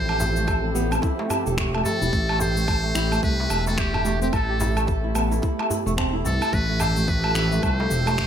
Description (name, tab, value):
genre	organic downtempo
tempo	109 BPM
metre	4/4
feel	swing 60% on 16ths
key	A minor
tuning	A4 = 440 Hz
part	trumpet with metal mute	melody	0.0-8.3 s	G4 to C5	-28 LUFS	equal	tape echo
part	warm analog pad	sustained chords	0.0-8.3 s	F3 to A4	-30 LUFS	right 1 dB	chorus, sidechain pumping
part	flamenco guitar	arpeggios	0.0-8.3 s	E3 to A4	-29 LUFS	right 2 dB	low-pass filter, tape echo
part	smooth gliding synth bass	bass	0.0-8.3 s	E1 to C2	-25 LUFS	equal	sidechain pumping
part	electronic woodblock, shaker and finger snaps	drums	0.1-8.3 s	none	-28 LUFS	equal	overdrive
part	darbuka	percussion	0.2-8.2 s	none	-34 LUFS	right 1 dB	none
part	electronic kick drum	drums	0.5-8.3 s	none	-26 LUFS	equal	none
room	light reverb, small room ambience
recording	none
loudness	-20 LUFS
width	side -9 dB against mid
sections	0.0-8.3 A section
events	none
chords	0.0 Fmaj7; 2.1 Am7; 6.5 Fmaj7